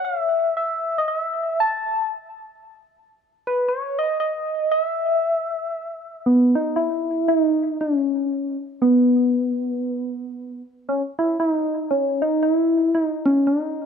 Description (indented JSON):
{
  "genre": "hawaiian",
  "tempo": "116 BPM",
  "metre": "4/4",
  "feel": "swing 60% on 8ths",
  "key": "unclear",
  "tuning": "A4 = 440 Hz",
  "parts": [
    { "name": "soft struck synth lead", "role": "solo", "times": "0.0-13.9 s", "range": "B3 to A5", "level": "-19 LUFS", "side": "equal", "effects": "chorus, phaser, tape echo" }
  ],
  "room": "wet studio reverb, RT60 0.6 s",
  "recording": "dark, warm production",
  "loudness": "-19 LUFS",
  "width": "side -7 dB against mid",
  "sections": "0.0-6.7 A section; 6.7-13.9 B section",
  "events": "none",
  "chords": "none",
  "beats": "0.05 | 0.56 1.08 1.59 2.11 | 2.62 3.14 3.65 4.17 | 4.69 5.20 5.72 6.23 | 6.75 7.26 7.77 8.29 | 8.80 9.32 9.83 10.35 | 10.86 11.38 11.89 12.40 | 12.92 13.43"
}